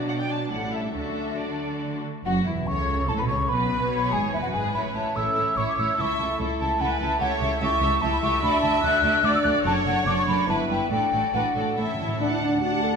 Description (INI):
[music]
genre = quick classical-period movement for symphony orchestra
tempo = 145 BPM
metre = 3/4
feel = rubato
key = A major, D major from 7.2 s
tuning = A4 = 440 Hz
[part]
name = rich studio violin section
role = second line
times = 0.0-13.0 s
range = D4 to F#5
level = -33 LUFS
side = left 1 dB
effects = none
[part]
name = rich studio viola section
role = accompaniment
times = 0.0-13.0 s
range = F#3 to E5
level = -29 LUFS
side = right 2 dB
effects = none
[part]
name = mellow French horn section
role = sustained chords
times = 0.0-13.0 s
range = E3 to A4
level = -31 LUFS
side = left 3 dB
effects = none
[part]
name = rich studio cello section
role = bass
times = 0.0-13.0 s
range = C#2 to A3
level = -31 LUFS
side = right 2 dB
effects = none
[part]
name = warm studio double bass section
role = bass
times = 0.0-13.0 s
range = E1 to D2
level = -31 LUFS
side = right 2 dB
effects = none
[part]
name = warm studio violin section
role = melody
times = 0.1-13.0 s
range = E4 to A5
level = -34 LUFS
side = left 3 dB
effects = none
[part]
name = mellow hollow silver concert flute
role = second line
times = 2.3-13.0 s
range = E5 to F#6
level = -25 LUFS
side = left 1 dB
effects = none
[part]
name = timpani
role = percussion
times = 11.8-12.2 s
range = A2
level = -32 LUFS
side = right 1 dB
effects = none
[part]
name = clear clarinet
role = second line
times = 12.2-13.0 s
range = D5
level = -34 LUFS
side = right 4 dB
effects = none
[sound]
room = wet scoring stage reverb, RT60 2.0 s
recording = minimal, uncompressed stereo recording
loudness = -21 LUFS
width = side -6 dB against mid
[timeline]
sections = 0.0-2.3 A section; 2.3-12.2 B section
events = timpani fill 11.8-12.2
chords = 0.0 Bm; 0.5 A7; 1.0 D; 2.3 A; 3.5 E/B; 4.7 A; 6.0 A/C#; 7.2 A7/C#; 8.4 D; 9.6 D/F#; 10.5 Em/G; 10.9 D/A; 11.8 A; 12.2 D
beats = 0.10 0.52 | 0.95 1.39 1.83 | 2.25 2.68 3.09 | 3.51 3.92 4.33 | 4.75 5.16 5.57 | 5.98 6.39 6.80 | 7.21 7.61 8.02 | 8.42 8.83 9.24 | 9.65 10.06 10.48 | 10.91 11.35 11.78 | 12.21 12.62